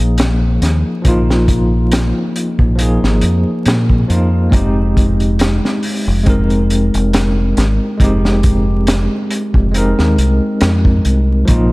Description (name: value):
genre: trip hop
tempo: 69 BPM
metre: 4/4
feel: swing 55% on 16ths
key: F minor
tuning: A4 = 441 Hz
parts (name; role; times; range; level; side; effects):
- bell-like tine electric piano; accompaniment; 0.0-11.7 s; F3 to Bb4; -16 LUFS; equal; tremolo, vintage 12-bit sampler grit, low-pass filter, tape echo
- deep dub fingered electric bass; bass; 0.0-11.7 s; F1 to Bb2; -14 LUFS; equal; none
- crunchy breakbeat drum kit; drums; 0.2-11.7 s; hi-hat, kick drum, snare drum; -16 LUFS; equal; none
room: moderate lush hall reverb, RT60 2.6 s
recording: dreamy mix soaked in reverb, vinyl crackle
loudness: -11 LUFS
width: side -22 dB against mid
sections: 0.0-11.7 A section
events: none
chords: 0.0 Bbsus4; 4.5 Fm7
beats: 0.17 | 1.04 1.92 2.78 3.65 | 4.52 5.39 6.26 7.13 | 8.00 8.87 9.74 10.61 | 11.48